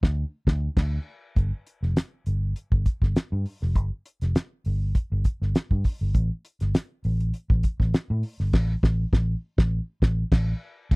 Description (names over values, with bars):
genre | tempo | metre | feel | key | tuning
funk | 100 BPM | 4/4 | straight | unclear | A4 = 440 Hz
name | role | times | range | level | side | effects
vintage muted fingered electric bass | bass | 0.0-11.0 s | F1 to A2 | -24 LUFS | equal | none
cloth-damped thuddy drum kit | drums | 0.0-11.0 s | crash cymbal, hi-hat, kick drum, snare drum | -21 LUFS | equal | none
room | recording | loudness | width
little or no reverb | dry, close 1970s-style studio recording | -23 LUFS | side -38 dB against mid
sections
0.0-1.4 A section; 1.4-10.9 B section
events
band accent 0.0-1.4, 8.5-10.9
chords
none